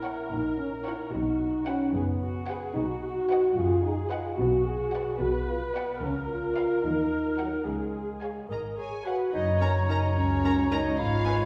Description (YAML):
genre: cinematic, playful, whimsical film cue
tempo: 73 BPM (dotted quarters)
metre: 6/8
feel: straight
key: F# major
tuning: A4 = 440 Hz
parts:
  - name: muted studio violin section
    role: melody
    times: 0.0-11.3 s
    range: E#5 to A#5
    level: -41 LUFS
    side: equal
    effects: none
  - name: muted studio violin section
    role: second line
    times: 0.0-11.5 s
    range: A#4 to A#5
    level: -39 LUFS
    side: equal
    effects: none
  - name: muted chamber viola section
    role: accompaniment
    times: 0.0-11.3 s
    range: C#4 to D#5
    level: -38 LUFS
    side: equal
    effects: none
  - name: mellow French horn section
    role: sustained chords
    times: 0.0-11.5 s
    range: F#3 to A#4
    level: -31 LUFS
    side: equal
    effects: none
  - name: muted chamber double bass section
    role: bass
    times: 0.0-11.5 s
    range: F#1 to D#2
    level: -35 LUFS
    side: equal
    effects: none
  - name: muted studio cello section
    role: bass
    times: 0.0-11.5 s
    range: C#2 to D#3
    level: -38 LUFS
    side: equal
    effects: none
  - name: warm clarinet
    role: second line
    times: 8.5-11.5 s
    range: C#4 to A#4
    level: -40 LUFS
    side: equal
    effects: none
  - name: bright oboe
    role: second line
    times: 9.3-11.5 s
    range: C#5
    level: -40 LUFS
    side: equal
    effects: none
  - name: silver concert flute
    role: second line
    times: 9.3-11.5 s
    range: A#5 to B5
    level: -37 LUFS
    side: equal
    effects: none
  - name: warm bassoon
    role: accompaniment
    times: 9.3-11.5 s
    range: F#3 to G#3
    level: -39 LUFS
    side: equal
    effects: none
room: wet scoring stage reverb, RT60 2.2 s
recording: recorded in a church or concert hall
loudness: -28 LUFS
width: mono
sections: 0.0-9.3 A section; 9.3-11.5 B section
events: none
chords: 0.0 F#/A#; 1.1 B; 4.4 G#m7b5/B; 6.0 C#7b9; 6.8 D#m; 7.7 C#; 9.3 F#